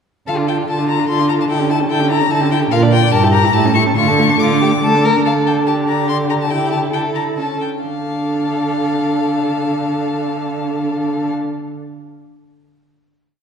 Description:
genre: quick classical-period movement for string quartet.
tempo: 128-149 BPM.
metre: 3/4.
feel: straight.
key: D minor.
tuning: A4 = 440 Hz.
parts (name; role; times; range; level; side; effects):
rich violin; melody; 0.3-11.3 s; F5 to D6; -20 LUFS; left 6 dB; none.
rich violin; second line; 0.3-11.3 s; F4 to D5; -21 LUFS; left 2 dB; none.
warm viola; accompaniment; 0.3-11.3 s; A3 to G4; -19 LUFS; equal; none.
rich cello; bass; 0.3-11.3 s; G2 to D3; -19 LUFS; right 3 dB; none.
room: wet concert hall reverb, RT60 1.8 s.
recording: heard from further back in the room.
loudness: -14 LUFS.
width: side -6 dB against mid.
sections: 0.3-5.3 A section; 5.3-7.8 coda; 7.8-10.5 final chord.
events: slowing down 4.6-7.8.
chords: 0.3 Dm; 1.5 A7/D; 2.7 Bb; 3.1 Edim/G; 3.5 A7; 4.0 Dm; 5.3 G5/D; 6.5 A7/D; 7.8 Dm.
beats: | 0.28 0.69 1.09 | 1.50 1.90 2.31 | 2.72 3.13 3.54 | 3.97 4.40 4.83 | 5.26 5.67 6.09 | 6.50 6.93 7.37 | 7.83 8.28 8.73 | 9.19 9.64 10.09.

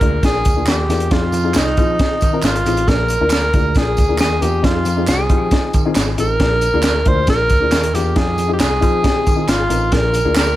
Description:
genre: uptempo 1960s-style soul.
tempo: 136 BPM.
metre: 4/4.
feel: straight.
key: Bb mixolydian.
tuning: A4 = 439 Hz.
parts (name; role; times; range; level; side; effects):
breathy tenor saxophone; melody; 0.0-10.6 s; Eb4 to C5; -18 LUFS; equal; tape echo.
dark upright piano; accompaniment; 0.0-10.5 s; Bb3 to Bb4; -22 LUFS; left 5 dB; none.
bell-like tine electric piano; bass; 0.0-10.5 s; Ab1 to F3; -20 LUFS; right 1 dB; medium stereo tremolo.
crunchy breakbeat drum kit; drums; 0.0-10.5 s; hi-hat, kick drum, snare drum; -18 LUFS; equal; none.
tambourine and handclaps; percussion; 0.2-10.5 s; none; -28 LUFS; right 3 dB; none.
room: little or no reverb.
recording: none.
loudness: -13 LUFS.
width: side -14 dB against mid.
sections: 0.0-10.6 A section.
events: none.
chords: 0.0 Bb7; 1.1 Fm7; 2.9 Bb7; 4.6 Fm7; 6.4 Bb7; 8.2 Fm7; 9.9 Bb7.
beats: 0.23 0.67 | 1.11 1.55 2.00 2.44 | 2.88 3.32 3.76 4.20 | 4.64 5.08 5.52 5.96 | 6.40 6.84 7.28 7.72 | 8.16 8.61 9.05 9.49 | 9.93 10.37.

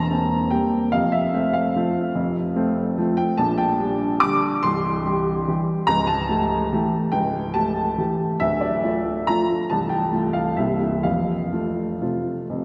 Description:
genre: classical, piano waltz.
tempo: 119-154 BPM.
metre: 3/4.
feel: rubato.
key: F major.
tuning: A4 = 440 Hz.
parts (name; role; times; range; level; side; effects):
clear upright piano; solo; 0.0-12.6 s; C1 to D6; -22 LUFS; equal; none.
room: wet church reverb, RT60 3.0 s.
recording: none.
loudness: -22 LUFS.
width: mono.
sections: 0.0-12.6 A section.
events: none.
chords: 0.0 C7/E; 0.9 F; 3.4 Gm/Bb; 4.6 C; 5.9 A7/C#; 8.4 Dm; 9.7 F/C; 10.6 C7; 11.1 F.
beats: 0.11 0.52 | 0.94 1.34 1.76 | 2.16 2.56 2.98 | 3.39 3.80 4.22 | 4.64 5.05 5.48 | 5.88 6.29 6.72 | 7.13 7.55 7.98 | 8.41 8.84 9.28 | 9.70 10.12 10.58 | 11.05 11.53 12.01 | 12.50.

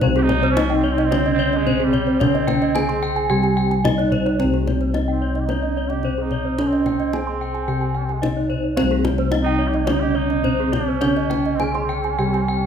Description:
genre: Balinese gamelan.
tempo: 110 BPM.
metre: 4/4.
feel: straight.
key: C pelog.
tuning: A4 = 440 Hz.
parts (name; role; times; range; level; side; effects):
gamelan-type bronze metallophone; melody; 0.0-12.7 s; C4 to Ab4; -24 LUFS; right 1 dB; none.
gamelan-type bronze metallophone; accompaniment; 0.0-4.4, 8.8-12.7 s; C3 to G3; -27 LUFS; right 3 dB; none.
gamelan-type bronze metallophone; arpeggios; 0.0-12.6 s; C5 to Ab5; -26 LUFS; left 5 dB; none.
gamelan-type bronze metallophone; arpeggios; 0.0-12.5 s; Ab4 to C6; -28 LUFS; right 7 dB; none.
gamelan-type bossed gongs; bass; 0.0-12.7 s; C2 to Db4+35c; -22 LUFS; left 1 dB; none.
kendang; percussion; 0.0-12.4 s; none; -28 LUFS; left 2 dB; none.
growling trumpet; second line; 0.2-12.7 s; G3 to G4; -29 LUFS; right 5 dB; none.
room: moderate recital hall reverb, RT60 1.6 s.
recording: none.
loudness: -17 LUFS.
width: side -8 dB against mid.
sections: 0.0-4.4 A section; 4.4-12.7 A section.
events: none.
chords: none.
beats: | 0.02 0.57 1.12 1.66 | 2.21 2.76 3.30 3.85 | 4.40 4.94 5.49 6.04 | 6.58 7.13 7.68 8.22 | 8.77 9.32 9.88 10.44 | 11.02 11.60 12.19.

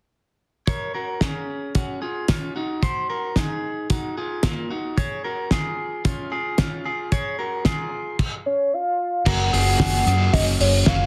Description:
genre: jangly indie pop.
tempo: 112 BPM.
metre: 4/4.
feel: straight.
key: unclear.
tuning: A4 = 444 Hz.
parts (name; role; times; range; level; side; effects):
electric guitar at the edge of break-up; arpeggios; 0.7-11.1 s; Bb3 to Db5; -30 LUFS; equal; spring reverb.
cloth-damped thuddy drum kit; drums; 0.7-11.0 s; crash cymbal, hi-hat, kick drum, snare drum; -24 LUFS; equal; soft clipping on kick.
soft octave-layered synth lead; melody; 8.5-11.1 s; Db5 to Gb5; -24 LUFS; equal; chorus.
crunchy overdriven guitar; accompaniment; 9.3-11.1 s; Gb3 to Ab4; -29 LUFS; equal; tremolo.
vintage muted fingered electric bass; bass; 9.3-11.1 s; Gb1 to Gb2; -23 LUFS; equal; none.
room: light reverb.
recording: dense, heavily limited modern master.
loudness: -23 LUFS.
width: mono.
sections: 0.7-9.3 A section; 9.3-11.1 B section.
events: none.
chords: 0.7 Gbadd9; 2.8 Ebm; 5.0 Db; 9.3 Gbadd9.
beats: | 0.68 1.21 1.75 2.29 | 2.83 3.36 3.90 4.44 | 4.97 5.51 6.05 6.58 | 7.12 7.66 8.19 8.73 | 9.27 9.80 10.34 10.87.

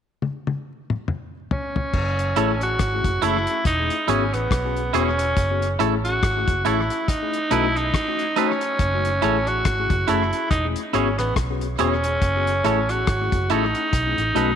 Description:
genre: lovers rock reggae.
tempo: 70 BPM.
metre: 4/4.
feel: swing 58% on 16ths.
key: F# dorian.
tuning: A4 = 440 Hz.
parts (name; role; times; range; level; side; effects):
cloth-damped thuddy drum kit; drums; 0.2-14.6 s; crash cymbal, hi-hat, kick drum, rim click, toms; -26 LUFS; left 2 dB; tape echo.
raspy tenor saxophone; melody; 1.5-14.6 s; B3 to F#4; -23 LUFS; right 1 dB; tape echo.
vintage muted fingered electric bass; bass; 1.9-14.6 s; E1 to B1; -25 LUFS; right 1 dB; none.
mellow tine electric piano; accompaniment; 2.4-14.5 s; A3 to G#4; -27 LUFS; left 10 dB; medium stereo tremolo, tape echo.
twangy electric guitar; stabs; 2.4-14.5 s; D#4 to C#5; -26 LUFS; right 10 dB; none.
room: moderate echo chamber reverb, RT60 2.1 s.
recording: 1960s-style stereo with parts hard left and right.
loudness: -19 LUFS.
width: side -8 dB against mid.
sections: 0.0-1.9 A section; 1.9-14.6 B section.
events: drum fill 0.2-1.9.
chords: 0.0 N.C.; 1.9 F#m7; 3.7 E6; 5.4 F#m7; 7.1 B7; 8.8 F#m7; 10.5 E6; 12.2 F#m7; 13.9 B7.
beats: 0.22 1.08 | 1.94 2.79 3.65 4.51 | 5.37 6.22 7.08 7.94 | 8.79 9.65 10.50 11.36 | 12.21 13.07 13.93.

